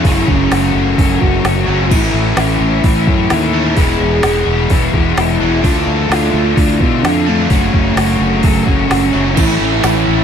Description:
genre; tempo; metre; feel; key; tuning
rock, shoegaze and dream pop; 129 BPM; 4/4; straight; A major; A4 = 439 Hz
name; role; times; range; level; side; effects
pure sine lead; melody; 0.0-10.2 s; A3 to G#4; -19 LUFS; right 2 dB; chorus, analog delay
crunchy overdriven guitar; riff; 0.0-10.2 s; E2 to D4; -20 LUFS; right 3 dB; none
overdriven electric guitar; riff; 0.0-10.2 s; E2 to F#4; -16 LUFS; left 7 dB; analog chorus
growling fingered electric bass; bass; 0.0-10.2 s; E1 to B2; -17 LUFS; equal; overdrive
organic electronic drum kit; drums; 0.0-9.9 s; crash cymbal, hi-hat, kick drum, snare drum; -17 LUFS; equal; overdrive
biting overdriven guitar; riff; 9.4-10.2 s; A2 to E4; -18 LUFS; right 11 dB; reverse reverb
tambourine; percussion; 9.8-9.9 s; none; -30 LUFS; right 20 dB; none
room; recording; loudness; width
moderate huge ambient reverb, RT60 8.9 s; dreamy mix soaked in reverb; -11 LUFS; side -8 dB against mid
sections
0.0-10.2 A section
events
none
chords
0.0 F#m; 1.9 A; 3.8 E; 5.6 Dm; 7.5 F#m; 9.4 A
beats
| 0.04 0.51 0.97 1.44 | 1.91 2.37 2.84 3.31 | 3.77 4.24 4.70 5.17 | 5.64 6.10 6.57 7.04 | 7.50 7.97 8.44 8.90 | 9.37 9.84

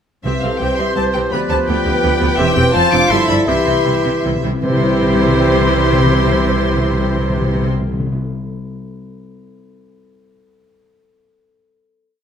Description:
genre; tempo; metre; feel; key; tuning
quick classical-period movement for symphony orchestra; 154-170 BPM; 3/4; straight; C major; A4 = 440 Hz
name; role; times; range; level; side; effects
rich chamber violin section; melody; 0.2-7.7 s; E5 to D6; -21 LUFS; left 3 dB; none
clear clarinet; second line; 0.2-7.7 s; E4 to G4; -24 LUFS; left 1 dB; none
clear oboe; second line; 0.2-7.7 s; G4 to C5; -25 LUFS; equal; none
rich studio violin section; second line; 0.2-7.7 s; G4 to G5; -26 LUFS; left 1 dB; none
dark bassoon; accompaniment; 0.2-7.7 s; E3 to F3; -23 LUFS; right 3 dB; none
dark French horn section; sustained chords; 0.2-7.7 s; E3 to G4; -23 LUFS; left 5 dB; none
clear symphonic cello section; bass; 0.2-7.7 s; C2 to C3; -23 LUFS; right 2 dB; none
rich chamber double bass section; bass; 0.2-7.7 s; E1 to D2; -22 LUFS; right 2 dB; none
timpani; percussion; 0.2-0.7, 3.5-8.2 s; C3; -20 LUFS; left 2 dB; none
hollow flute section; second line; 0.3-7.7 s; G4 to F5; -23 LUFS; right 1 dB; none
rich chamber viola section; accompaniment; 0.3-7.7 s; G3 to G4; -24 LUFS; right 2 dB; none
room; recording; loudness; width
moderate scoring stage reverb, RT60 1.6 s; none; -13 LUFS; side -8 dB against mid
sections
0.2-4.6 A section; 4.6-6.9 final chord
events
slowing down 1.9-4.6; timpani fill 3.5-4.6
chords
0.2 C; 1.3 G7/D; 2.4 C/E; 2.7 F; 3.1 G13; 3.5 C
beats
| 0.25 0.60 0.96 | 1.32 1.68 2.03 | 2.39 2.74 3.10 | 3.48 3.86 4.24 | 4.63 5.01 5.39 | 5.78 6.16 6.54

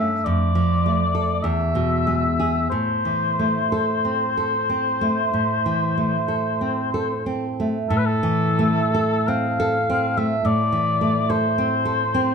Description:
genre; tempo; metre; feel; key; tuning
romantic duo for oboe and classical guitar; 41-54 BPM; 4/4; rubato; A minor; A4 = 440 Hz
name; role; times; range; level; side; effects
mellow oboe; melody; 0.0-12.3 s; A4 to F5; -22 LUFS; left 3 dB; none
nylon-string guitar; accompaniment; 0.0-12.3 s; E2 to A4; -21 LUFS; right 1 dB; none
room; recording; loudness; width
moderate recital hall reverb, RT60 1.4 s; none; -19 LUFS; side -6 dB against mid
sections
0.0-7.9 A section; 7.9-12.3 A section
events
none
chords
0.3 Dm/F; 1.4 E; 2.7 Am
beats
0.26 1.44 | 2.71 4.03 5.32 6.61 | 7.90 9.26 10.44 11.57

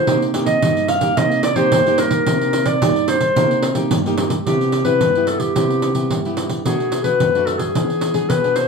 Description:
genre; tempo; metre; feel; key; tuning
samba and choro; 109 BPM; 4/4; straight; C minor, C major from 4.5 s; A4 = 443 Hz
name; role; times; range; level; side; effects
warm clarinet; melody; 0.0-8.7 s; G4 to F5; -18 LUFS; left 1 dB; plate reverb
nylon-string guitar; accompaniment; 0.0-8.7 s; F#2 to G#4; -20 LUFS; left 1 dB; none
pandeiro; percussion; 0.1-8.7 s; none; -21 LUFS; right 3 dB; none
room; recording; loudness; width
wet studio reverb, RT60 0.6 s; small room ambience; -15 LUFS; side -5 dB against mid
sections
0.0-4.5 A section; 4.5-8.7 B section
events
none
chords
0.1 Cm7; 4.5 Cmaj7; 6.7 Bm7; 7.8 E7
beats
| 0.08 0.62 1.17 1.72 | 2.27 2.81 3.36 3.91 | 4.46 5.01 5.56 6.11 | 6.65 7.20 7.75 8.30

